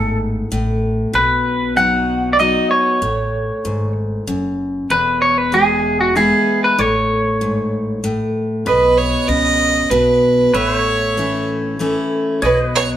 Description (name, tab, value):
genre	honky-tonk and classic country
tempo	96 BPM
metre	3/4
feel	straight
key	B mixolydian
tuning	A4 = 440 Hz
part	electric guitar through a small old amp	melody	0.0-8.0 s	F#4 to F#5	-15 LUFS	right 1 dB	none
part	picked steel-string acoustic guitar	accompaniment	0.0-13.0 s	E2 to F#4	-20 LUFS	left 2 dB	none
part	upright bass	bass	0.0-13.0 s	E1 to C#2	-25 LUFS	equal	none
part	clear fiddle	second line	8.7-12.9 s	B4 to D#5	-15 LUFS	right 3 dB	none
part	pedal steel guitar	sustained chords	8.7-13.0 s	B4 to E5	-23 LUFS	equal	none
room	wet stone room reverb, RT60 1.0 s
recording	band playing live in one room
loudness	-14 LUFS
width	side -11 dB against mid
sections	0.0-8.7 A section; 8.7-13.0 A section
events	fiddle solo 8.7-13.0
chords	0.0 N.C.; 1.1 B; 3.0 A; 4.9 E; 6.8 A; 8.7 B; 10.5 A; 12.4 B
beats	0.52 | 1.14 1.77 2.40 | 3.02 3.65 4.28 | 4.90 5.53 6.16 | 6.78 7.41 8.04 | 8.66 9.29 9.91 | 10.54 11.17 11.79 | 12.42